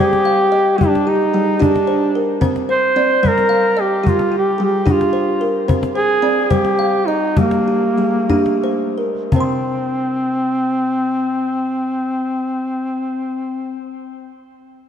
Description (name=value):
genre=world meditative, meditative tuned percussion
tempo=55-74 BPM (dotted quarters)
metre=6/8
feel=straight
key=unclear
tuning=A4 = 440 Hz
part: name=warm duduk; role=melody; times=0.0-13.8 s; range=Bb3 to C5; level=-17 LUFS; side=equal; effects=shimmer reverb, ping-pong delay
part: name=kalimba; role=arpeggios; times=0.0-13.9 s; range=C3 to C6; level=-18 LUFS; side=equal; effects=shimmer reverb
part: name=cajon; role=percussion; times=0.1-9.7 s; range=none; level=-19 LUFS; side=left 2 dB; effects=none
room=wet echo chamber reverb, RT60 1.8 s, small room ambience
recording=cassette tape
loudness=-14 LUFS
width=side -8 dB against mid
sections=0.0-9.3 A section; 9.3-13.7 B section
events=slowing down 5.7-9.3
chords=0.0 Cm; 0.8 Gm; 2.4 Cm; 4.0 Gm; 5.7 Cm; 7.4 Gm; 9.3 N.C.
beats=| 0.78 1.59 | 2.41 3.23 | 4.04 4.86 | 5.68 6.50 | 7.37 8.30 | 9.32 10.41 | 11.50 12.59